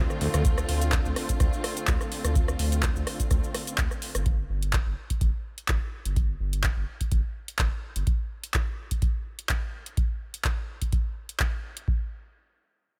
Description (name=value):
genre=acid house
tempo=126 BPM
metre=4/4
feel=swing 54% on 16ths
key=D minor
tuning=A4 = 442 Hz
part: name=rich symphonic string section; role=sustained chords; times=0.0-4.2 s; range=D3 to F4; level=-36 LUFS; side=equal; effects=sidechain pumping
part: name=round analog bass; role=bass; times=0.0-8.0 s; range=G1 to D2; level=-31 LUFS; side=equal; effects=tube saturation, sidechain pumping
part: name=electro analog drum machine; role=drums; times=0.1-11.9 s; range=handclaps, hi-hat, rim click, shaker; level=-34 LUFS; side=equal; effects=small room reverb
part: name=electronic kick drum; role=drums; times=0.5-12.0 s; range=none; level=-29 LUFS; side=equal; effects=small room reverb
room=little or no reverb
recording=none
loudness=-28 LUFS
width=mono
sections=0.0-11.9 A section; 11.9-13.0 B section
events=none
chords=0.0 Dm7; 4.3 N.C.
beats=| 0.45 0.93 1.40 1.88 | 2.35 2.83 3.31 3.78 | 4.26 4.73 5.21 5.69 | 6.16 6.64 7.12 7.59 | 8.07 8.54 9.02 9.50 | 9.97 10.45 10.93 11.40 | 11.88